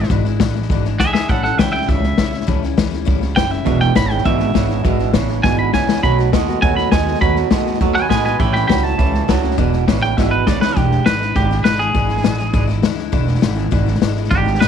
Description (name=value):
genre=rockabilly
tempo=203 BPM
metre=4/4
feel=straight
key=E mixolydian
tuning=A4 = 440 Hz
part: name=twangy electric guitar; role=melody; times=0.0-14.7 s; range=G4 to B5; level=-20 LUFS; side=right 2 dB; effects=tape echo
part: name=picked steel-string acoustic guitar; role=accompaniment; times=0.0-14.7 s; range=E2 to F#4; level=-24 LUFS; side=left 12 dB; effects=none
part: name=upright bass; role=bass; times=0.0-14.7 s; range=E1 to E2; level=-19 LUFS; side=right 2 dB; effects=none
part: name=vintage drum kit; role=drums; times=0.0-14.7 s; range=hi-hat, kick drum, snare drum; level=-18 LUFS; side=left 3 dB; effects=none
part: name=twangy electric guitar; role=riff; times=3.7-10.7 s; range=E2 to G#3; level=-20 LUFS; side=right 16 dB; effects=none
room=studio ambience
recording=1960s-style stereo with parts hard left and right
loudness=-14 LUFS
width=side -8 dB against mid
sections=0.0-10.8 A section; 10.8-14.7 B section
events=drum fill 1.0, 5.4-6.0, 10.2-10.8; clean electric guitar solo 10.8-14.7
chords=0.0 E7; 1.3 A7; 3.7 E7; 6.0 B7; 8.4 A7; 9.6 E7